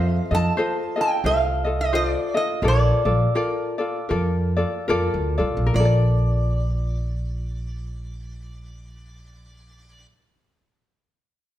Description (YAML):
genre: Hawaiian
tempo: 69-92 BPM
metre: 4/4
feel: swing 60% on 8ths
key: Bb major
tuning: A4 = 440 Hz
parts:
  - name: metal-body resonator slide guitar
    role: melody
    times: 0.0-10.1 s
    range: D5 to A5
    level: -24 LUFS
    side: right 1 dB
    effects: none
  - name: ukulele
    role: accompaniment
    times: 0.0-10.2 s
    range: F4 to Eb5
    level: -24 LUFS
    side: left 2 dB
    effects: none
  - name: upright bass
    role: bass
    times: 0.0-10.0 s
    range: Bb1 to F2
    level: -22 LUFS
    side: right 1 dB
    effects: none
room: moderate recital hall reverb, RT60 1.4 s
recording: none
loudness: -19 LUFS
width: side -13 dB against mid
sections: 0.0-5.7 A section; 5.7-9.2 B section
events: slowing down 0.0-5.7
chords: 0.0 F7; 2.6 Bbmaj7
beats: 0.58 1.25 1.92 | 2.62 3.35 4.10 4.89 | 5.74 6.60 7.47 8.34